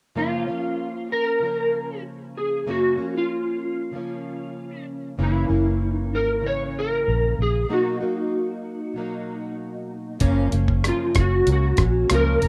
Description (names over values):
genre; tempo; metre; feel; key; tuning
indie pop, bedroom pop; 96 BPM; 4/4; straight; F# major; A4 = 436 Hz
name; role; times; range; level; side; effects
electric slide guitar; melody; 0.2-12.5 s; E4 to C#5; -26 LUFS; equal; ensemble chorus
fingerpicked plugged-in steel-string acoustic guitar; accompaniment; 0.2-12.5 s; F#2 to D#4; -31 LUFS; equal; ensemble chorus, warbly pitch drift
vintage muted fingered electric bass; bass; 5.2-12.5 s; E#1 to C#2; -24 LUFS; equal; none
dusty soul sampler-style drum kit; drums; 10.2-12.5 s; hi-hat, kick drum, rim click; -24 LUFS; equal; none
room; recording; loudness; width
light reverb; rough home demo mix; -23 LUFS; mono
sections
0.2-10.2 A section; 10.2-12.5 B section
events
break 7.7-10.2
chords
0.2 F#maj7; 5.2 F#7; 7.7 Bmaj7; 10.2 F#maj7